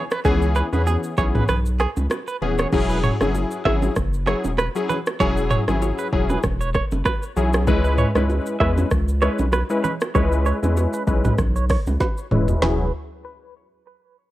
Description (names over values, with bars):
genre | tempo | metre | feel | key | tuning
afrobeats | 97 BPM | 4/4 | swing 55% on 16ths | E major | A4 = 441 Hz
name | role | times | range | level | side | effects
warm analog keys | accompaniment | 0.0-12.9 s | E3 to B4 | -23 LUFS | left 2 dB | chorus, low-pass filter
direct-recorded clean electric guitar | riff | 0.0-12.9 s | G#4 to E5 | -26 LUFS | right 5 dB | tremolo, low-pass filter, ping-pong delay
afro-pop drum kit | drums | 0.1-12.8 s | crash cymbal, hi-hat, kick drum, rim click, shaker, snare drum, toms | -23 LUFS | equal | overdrive
saturated sub bass | bass | 0.3-12.9 s | D#1 to E2 | -22 LUFS | equal | none
congas and bongos | percussion | 0.3-12.9 s | none | -29 LUFS | right 3 dB | none
room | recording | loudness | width
little or no reverb | worn, warbling old tape, cassette tape, warbly pitch drift | -18 LUFS | side -15 dB against mid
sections
0.0-2.7 A section; 2.7-12.6 B section; 12.6-14.3 C section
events
break 1.5-2.7; filter sweep 2.7-12.6; drum fill 12.0-12.6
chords
0.0 C#m7; 2.7 E69; 7.7 C#m7; 12.6 E69